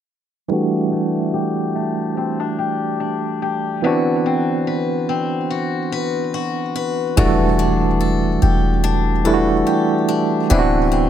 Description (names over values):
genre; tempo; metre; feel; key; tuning
R&B; 72 BPM; 4/4; swing 54% on 16ths; E minor; A4 = 439 Hz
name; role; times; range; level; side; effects
barky tine electric piano; accompaniment; 0.5-11.1 s; E3 to F#4; -18 LUFS; right 2 dB; overdrive, fast stereo tremolo, low-pass filter
picked swing-style acoustic guitar; arpeggios; 0.5-11.1 s; D3 to B4; -23 LUFS; left 8 dB; low-pass filter
clean 808-style bass; bass; 7.2-11.1 s; D1 to E1; -18 LUFS; equal; none
impact; sound effects; 7.2-10.5 s; none; -30 LUFS; equal; none
room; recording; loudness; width
light reverb; none; -16 LUFS; side -10 dB against mid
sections
0.5-7.2 A section; 7.2-11.1 B section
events
filter sweep 0.5-7.2; impact 7.2-10.5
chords
0.5 Em11; 3.8 D13; 7.2 Em11; 10.5 D13